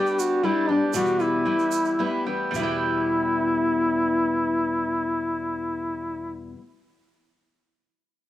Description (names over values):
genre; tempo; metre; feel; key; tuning
acoustic folk duo or small band; 105-123 BPM; 3/4; straight; E minor; A4 = 440 Hz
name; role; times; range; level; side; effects
warm duduk; melody; 0.0-6.5 s; D4 to G4; -23 LUFS; equal; cassette tape, plate reverb
picked steel-string acoustic guitar; accompaniment; 0.0-6.6 s; E2 to G4; -29 LUFS; left 4 dB; cassette tape, plate reverb
mandolin; arpeggios; 0.0-6.7 s; G3 to G5; -32 LUFS; right 7 dB; cassette tape, plate reverb
egg shaker; percussion; 0.1-2.8 s; none; -37 LUFS; right 10 dB; none
room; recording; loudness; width
wet studio reverb, RT60 0.6 s; home recording on cassette; -22 LUFS; side -13 dB against mid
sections
0.0-2.5 A section; 2.5-6.0 B section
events
slowing down 0.0-2.5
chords
0.0 G; 0.9 Em